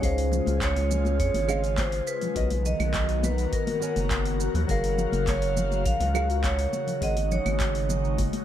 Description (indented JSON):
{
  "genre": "sunset chillout",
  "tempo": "103 BPM",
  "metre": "4/4",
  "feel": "straight",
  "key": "Db major",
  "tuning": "A4 = 440 Hz",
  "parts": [
    { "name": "vibraphone with medium hard mallets", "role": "melody", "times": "0.0-8.1 s", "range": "Bb4 to F5", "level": "-29 LUFS", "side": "right 1 dB", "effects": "ping-pong delay" },
    { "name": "nylon-string guitar", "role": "accompaniment", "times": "0.0-7.2 s", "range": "Gb3 to Ab5", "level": "-34 LUFS", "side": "moving between left 6 dB and right 5 dB", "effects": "auto-pan, ping-pong delay" },
    { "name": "airy breathy pad", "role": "sustained chords", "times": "0.0-8.4 s", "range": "Db3 to F5", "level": "-32 LUFS", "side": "left 1 dB", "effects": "chorus, phaser" },
    { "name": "round analog bass", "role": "bass", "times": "0.0-8.3 s", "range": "Gb1 to F2", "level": "-27 LUFS", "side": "equal", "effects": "none" },
    { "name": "deep house drum kit", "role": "drums", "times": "0.0-8.4 s", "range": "claves, handclaps, hi-hat, shaker", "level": "-35 LUFS", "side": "right 1 dB", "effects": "overdrive" },
    { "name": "electronic kick drum", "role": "drums", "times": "0.0-8.3 s", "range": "none", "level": "-30 LUFS", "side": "equal", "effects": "none" },
    { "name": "congas", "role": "percussion", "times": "0.0-8.4 s", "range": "none", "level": "-35 LUFS", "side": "left 3 dB", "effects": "none" }
  ],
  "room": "studio reverb",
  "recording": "none",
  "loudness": "-23 LUFS",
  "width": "side -11 dB against mid",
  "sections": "0.0-8.4 A section",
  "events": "none",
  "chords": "0.0 Dbmaj7; 2.4 Cbmaj7; 4.7 Gbmaj7; 6.7 Ab7sus4"
}